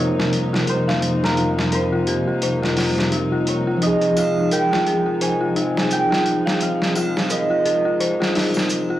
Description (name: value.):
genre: trip hop.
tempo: 86 BPM.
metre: 4/4.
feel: swing 57% on 16ths.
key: F minor.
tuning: A4 = 436 Hz.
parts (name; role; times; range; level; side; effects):
santur; melody; 0.0-9.0 s; Bb4 to Ab5; -24 LUFS; right 3 dB; vintage 12-bit sampler grit, tape echo.
tine electric piano; accompaniment; 0.0-9.0 s; C3 to Bb4; -24 LUFS; equal; fast stereo tremolo, harmonic tremolo.
dark studio string section; sustained chords; 0.0-9.0 s; F2 to Eb4; -26 LUFS; equal; none.
dark detuned synth bell; arpeggios; 0.0-9.0 s; Eb4 to F5; -23 LUFS; left 3 dB; chorus, vintage 12-bit sampler grit, low-pass filter, tape echo.
trip hop sampler-style drum kit; drums; 0.2-8.9 s; hi-hat, snare drum; -24 LUFS; equal; high-pass filter on hats, high-pass filter on snare, high-pass filter on room.
triangle and maracas; percussion; 4.2-8.9 s; none; -34 LUFS; right 2 dB; none.
room: light reverb, studio ambience.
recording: dry, gritty hardware recording, transformer saturation, vinyl crackle.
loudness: -17 LUFS.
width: side -13 dB against mid.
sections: 0.0-9.0 A section.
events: filter sweep on tine electric piano 0.0-9.0.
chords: 0.0 Cm7/F; 3.8 Fm7.